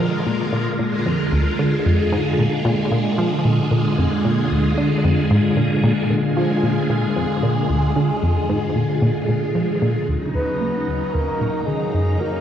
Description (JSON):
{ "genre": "ambient, sequencer-driven space music", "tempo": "113 BPM", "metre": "4/4", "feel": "straight", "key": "unclear", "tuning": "A4 = 440 Hz", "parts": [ { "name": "phased string machine", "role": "sustained chords", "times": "0.0-12.4 s", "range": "Db3 to Bb5", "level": "-20 LUFS", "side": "equal", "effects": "ensemble chorus, phaser" }, { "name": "tight sequenced synth", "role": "riff", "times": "0.0-12.4 s", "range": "D2 to Bb3", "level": "-20 LUFS", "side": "equal", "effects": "chorus, tape echo" }, { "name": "breathy flute-like synth lead", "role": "melody", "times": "10.3-12.4 s", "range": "Ab4 to Cb5", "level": "-24 LUFS", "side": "equal", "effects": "chorus, tape echo" } ], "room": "wet concert hall reverb, RT60 2.3 s", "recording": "worn, warbling old tape, cassette tape, warbly pitch drift", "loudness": "-17 LUFS", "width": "side -9 dB against mid", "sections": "0.0-10.1 A section; 10.1-12.4 B section", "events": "none", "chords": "0.0 Bb7; 10.1 Ebm7", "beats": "0.00 0.53 1.06 | 1.59 2.12 2.65 3.18 | 3.71 4.25 4.78 5.31 | 5.84 6.37 6.90 7.43 | 7.96 8.49 9.02 9.55 | 10.09 10.62 11.15 11.68 | 12.21" }